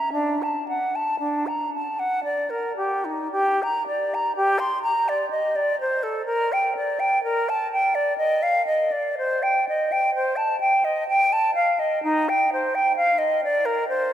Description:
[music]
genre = classical, baroque-style fantasia for unaccompanied flute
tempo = 54-66 BPM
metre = 3/4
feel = rubato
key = G minor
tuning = A4 = 440 Hz
[part]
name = bright silver concert flute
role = solo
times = 0.0-14.1 s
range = D4 to C6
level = -20 LUFS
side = equal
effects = none
[sound]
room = wet cathedral reverb, RT60 5.8 s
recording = minimal, uncompressed stereo recording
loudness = -20 LUFS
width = side -10 dB against mid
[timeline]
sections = 0.0-3.3 A section; 3.3-14.1 A section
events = none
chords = none

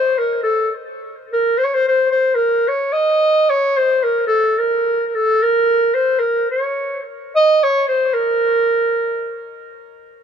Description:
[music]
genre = balkan folk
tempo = free time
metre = none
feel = none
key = Bb harmonic minor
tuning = A4 = 440 Hz
[part]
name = clear clarinet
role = solo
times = 0.0-9.6 s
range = A4 to Eb5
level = -15 LUFS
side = equal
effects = tape echo
[sound]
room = light reverb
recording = none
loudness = -14 LUFS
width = side -7 dB against mid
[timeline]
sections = 0.0-10.0 A section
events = none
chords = none

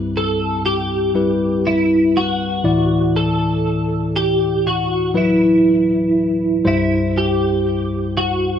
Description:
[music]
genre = pop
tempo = 60 BPM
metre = 4/4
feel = straight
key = unclear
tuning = A4 = 437 Hz
[part]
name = tine electric piano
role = accompaniment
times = 0.0-8.6 s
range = C2 to D5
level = -18 LUFS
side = left 2 dB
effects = none
[part]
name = twelve-string electric guitar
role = melody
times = 0.2-8.6 s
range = E4 to A4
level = -18 LUFS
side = right 1 dB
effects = ensemble chorus
[sound]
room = light reverb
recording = none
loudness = -15 LUFS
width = side -8 dB against mid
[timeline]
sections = 0.0-8.6 A section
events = none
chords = 0.0 C; 2.7 Dadd9; 6.7 C

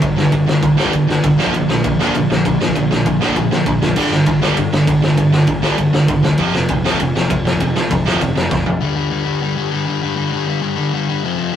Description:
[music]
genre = punk rock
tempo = 198 BPM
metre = 4/4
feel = straight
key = G minor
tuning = A4 = 442 Hz
[part]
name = cranked stack guitar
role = riff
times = 0.0-8.8 s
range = F2 to G3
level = -18 LUFS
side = right 5 dB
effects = overdrive
[part]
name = overdriven electric guitar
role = riff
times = 0.0-11.6 s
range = F2 to Bb3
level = -17 LUFS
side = left 2 dB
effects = none
[part]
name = growling picked electric bass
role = bass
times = 0.0-8.8 s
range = F1 to D2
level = -28 LUFS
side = equal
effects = none
[part]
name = raw garage drum kit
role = drums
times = 0.0-8.7 s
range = crash cymbal, kick drum, ride cymbal, snare drum, toms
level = -19 LUFS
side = left 1 dB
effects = none
[sound]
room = moderate studio reverb, RT60 0.6 s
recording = rough rehearsal-room recording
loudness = -14 LUFS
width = side -9 dB against mid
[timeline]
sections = 0.0-8.8 A section; 8.8-11.6 B section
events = drum fill 8.5-8.8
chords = 0.0 G5; 1.4 Bb; 4.0 G5; 6.4 F5; 8.8 G5

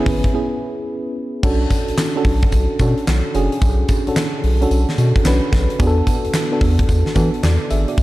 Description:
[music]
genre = R&B, new jack swing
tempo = 110 BPM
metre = 4/4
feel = swing 65% on 16ths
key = B dorian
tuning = A4 = 440 Hz
[part]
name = FM electric piano with auto-pan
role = accompaniment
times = 0.0-8.0 s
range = B3 to E5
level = -20 LUFS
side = right 1 dB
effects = none
[part]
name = round analog bass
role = bass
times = 0.1-8.0 s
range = F#1 to E3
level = -17 LUFS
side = equal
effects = none
[part]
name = huge arena drum kit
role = drums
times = 0.1-8.0 s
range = crash cymbal, handclaps, hi-hat, kick drum, snare drum, tambourine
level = -19 LUFS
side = equal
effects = none
[sound]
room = studio ambience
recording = dark, warm production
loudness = -15 LUFS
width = side -17 dB against mid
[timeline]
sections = 0.0-1.4 A section; 1.4-8.0 B section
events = break 0.3-1.4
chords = 0.0 Amaj9 (rootless); 1.4 Bm9; 5.8 E7sus4

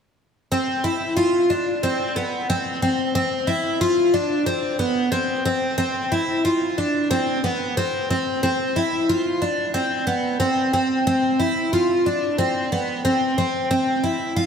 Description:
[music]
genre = dream pop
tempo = 91 BPM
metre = 4/4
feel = straight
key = D dorian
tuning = A4 = 440 Hz
[part]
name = picked twelve-string acoustic guitar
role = solo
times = 0.5-14.5 s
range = B3 to F4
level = -19 LUFS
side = equal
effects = lush chorus, diffuse ambient delay
[sound]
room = wet plate reverb, RT60 2.9 s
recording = dreamy mix soaked in reverb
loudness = -19 LUFS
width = side -7 dB against mid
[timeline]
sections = 0.5-14.5 A section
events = none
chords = none

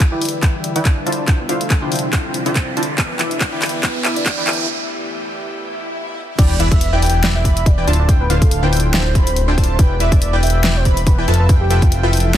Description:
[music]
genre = future bass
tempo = 141 BPM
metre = 4/4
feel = swing 55% on 16ths, half-time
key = unclear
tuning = A4 = 440 Hz
[part]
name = warm velvety synth lead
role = melody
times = 0.0-12.4 s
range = E4 to G5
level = -26 LUFS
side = equal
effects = chorus, tremolo, cassette tape, sidechain pumping, digital delay
[part]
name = airy breathy pad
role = sustained chords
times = 0.0-6.4 s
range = C3 to G4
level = -30 LUFS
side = left 1 dB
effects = chorus, sidechain pumping
[part]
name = supersaw stab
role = riff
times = 0.0-12.4 s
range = D3 to B5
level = -22 LUFS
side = equal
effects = vintage 12-bit sampler grit, sidechain pumping, low-pass filter
[part]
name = fat analog bass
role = bass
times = 0.0-12.4 s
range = D1 to F1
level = -18 LUFS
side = equal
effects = sidechain pumping, high-pass filter
[part]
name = electronic kick drum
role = drums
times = 0.0-11.9 s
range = none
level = -14 LUFS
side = equal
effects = small room reverb
[part]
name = pop drum kit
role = drums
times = 0.0-12.4 s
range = crash cymbal, handclaps, hi-hat, snare drum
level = -22 LUFS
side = left 1 dB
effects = soft clipping on snare, small room reverb
[part]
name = riser, swell and sub drop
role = sound effects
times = 0.0-8.1 s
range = none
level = -26 LUFS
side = right 1 dB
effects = none
[part]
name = airy dreamy lead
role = arpeggios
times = 6.4-12.4 s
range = E5 to B5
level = -26 LUFS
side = right 1 dB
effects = chorus, cassette tape, sidechain pumping, ping-pong delay
[sound]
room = digital ambience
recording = dense, heavily limited modern master, high-pass filter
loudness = -14 LUFS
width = side -11 dB against mid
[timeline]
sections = 0.0-6.4 A section; 6.4-12.4 B section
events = build-up 0.0-6.4; drum fill 0.0-4.7; riser 0.0-4.7; filter sweep on supersaw synth 0.0-6.4; filter sweep on soft synth lead 0.0-6.4; filter sweep 0.0-6.4; break 4.7-6.4; swell 5.7-6.4; drop 6.4-12.4; impact 6.4-8.1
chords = 0.0 Em7; 1.1 Dm11; 3.0 Em7; 4.5 Fmaj9#11; 6.4 Em7; 7.9 Dm11; 9.8 Em7; 11.3 Fmaj9#11

